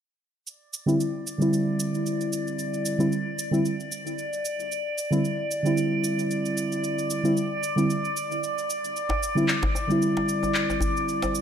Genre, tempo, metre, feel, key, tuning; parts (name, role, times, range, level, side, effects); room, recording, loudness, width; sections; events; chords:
organic downtempo; 113 BPM; 4/4; swing 55% on 16ths; A4 = 442 Hz
electronic cabasa and handclaps; drums; 0.5-11.4 s; -31 LUFS; right 1 dB; studio reverb
drifting glass-harmonics texture; texture; 1.0-11.4 s; D5; -30 LUFS; left 1 dB; chorus, built-in reverb
muted felt-like synth keys; accompaniment; 0.9-11.4 s; D3 to E4; -25 LUFS; right 1 dB; chorus, low-pass filter, digital delay
djembe; percussion; 9.1-11.3 s; -29 LUFS; left 1 dB
moderate lush hall reverb, RT60 1.8 s, digital ambience; -23 LUFS; side -8 dB against mid
0.5-11.4 A section
filter sweep on synth keys 0.5-11.4
0.5 D9sus4